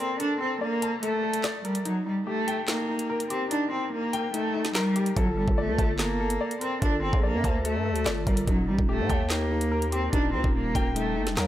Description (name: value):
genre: hip hop, drill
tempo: 145 BPM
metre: 4/4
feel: half-time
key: unclear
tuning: A4 = 440 Hz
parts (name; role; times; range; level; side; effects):
- rich cello; melody; 0.0-11.5 s; F#3 to D4; -27 LUFS; equal; digital delay
- warm concert grand piano; accompaniment; 0.0-11.5 s; Eb4 to A5; -32 LUFS; left 3 dB; none
- drill drum kit; drums; 0.2-11.5 s; handclaps, hi-hat, kick drum, snare drum; -28 LUFS; equal; none
- growling 808-style bass; bass; 5.2-11.5 s; Eb1 to Bb2; -29 LUFS; equal; none
room: digital ambience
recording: none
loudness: -24 LUFS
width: side -13 dB against mid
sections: 0.0-11.5 A section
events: break 0.0-5.2; kick muted 3.5-5.2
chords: 0.0 Bbmaj7; 1.9 Eb; 5.2 Gmadd9; 8.5 Eb